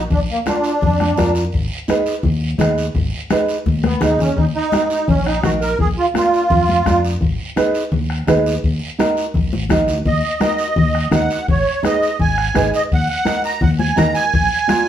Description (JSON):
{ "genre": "latin, cumbia", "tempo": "169 BPM", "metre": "4/4", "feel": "straight", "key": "Eb harmonic minor, Eb minor from 10.1 s", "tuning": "A4 = 441 Hz", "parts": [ { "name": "musette accordion", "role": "melody", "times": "0.0-1.3, 3.9-7.0, 10.1-14.9 s", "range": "Bb3 to Bb5", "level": "-18 LUFS", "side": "right 2 dB", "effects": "none" }, { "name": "fingered electric bass", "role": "bass", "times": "0.0-14.5 s", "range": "Ab1 to F2", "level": "-21 LUFS", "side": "equal", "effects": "none" }, { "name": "bombo", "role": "percussion", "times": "0.1-14.9 s", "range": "none", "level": "-22 LUFS", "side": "left 2 dB", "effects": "none" }, { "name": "congas", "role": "percussion", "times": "0.1-14.9 s", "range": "none", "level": "-22 LUFS", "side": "left 3 dB", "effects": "none" }, { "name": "guiro", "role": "percussion", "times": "0.1-14.9 s", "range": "none", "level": "-32 LUFS", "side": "right 3 dB", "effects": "none" }, { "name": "nylon-string guitar", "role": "accompaniment", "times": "0.5-14.9 s", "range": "D4 to Cb5", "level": "-19 LUFS", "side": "right 2 dB", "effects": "none" } ], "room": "wet studio reverb, RT60 0.7 s", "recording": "band playing live in one room", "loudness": "-15 LUFS", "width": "side -10 dB against mid", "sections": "0.0-10.1 A section; 10.1-14.9 B section", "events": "drum fill 3.7-4.4", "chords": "0.1 Bb; 1.5 Abm; 4.4 Ebm; 5.8 Bb; 7.2 Abm; 8.6 Ebm; 11.5 Abm; 12.9 Ebm; 14.3 Bb7" }